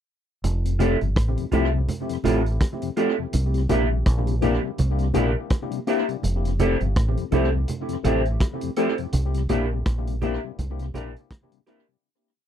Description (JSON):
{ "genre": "lovers rock reggae", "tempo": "83 BPM", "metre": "4/4", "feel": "swing 58% on 16ths", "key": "F major", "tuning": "A4 = 441 Hz", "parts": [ { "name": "deep dub fingered electric bass", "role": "bass", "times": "0.4-11.1 s", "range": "F1 to C2", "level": "-23 LUFS", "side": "equal", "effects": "none" }, { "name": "vintage drum kit", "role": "drums", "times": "0.4-11.9 s", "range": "hi-hat, kick drum, rim click", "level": "-27 LUFS", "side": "equal", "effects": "tape echo" }, { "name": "congas", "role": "percussion", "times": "0.4-11.1 s", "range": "none", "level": "-31 LUFS", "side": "right 4 dB", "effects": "tape echo" }, { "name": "mellow tonewheel organ", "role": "accompaniment", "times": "0.7-12.0 s", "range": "F2 to E4", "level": "-31 LUFS", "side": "left 12 dB", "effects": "chorus vibrato, slow rotary speaker, tape echo" }, { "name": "tine electric piano", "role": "accompaniment", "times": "0.8-11.8 s", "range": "A3 to G4", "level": "-28 LUFS", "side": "left 2 dB", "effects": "medium stereo tremolo, tape echo" }, { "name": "electric guitar through a small old amp", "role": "stabs", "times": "0.8-11.8 s", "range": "F4 to E5", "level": "-25 LUFS", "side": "right 3 dB", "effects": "wide subtle chorus" } ], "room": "little or no reverb", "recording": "dry, close 1970s-style studio recording", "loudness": "-21 LUFS", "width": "side -9 dB against mid", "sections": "0.4-12.0 verse", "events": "fade-out 9.1-12.0", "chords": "0.4 Fmaj7; 3.3 C7; 6.2 Fmaj7; 9.1 C7", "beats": "| 0.44 1.17 1.89 2.61 | 3.34 4.06 4.79 5.51 | 6.24 6.96 7.68 8.41 | 9.14 9.86 10.59 11.31" }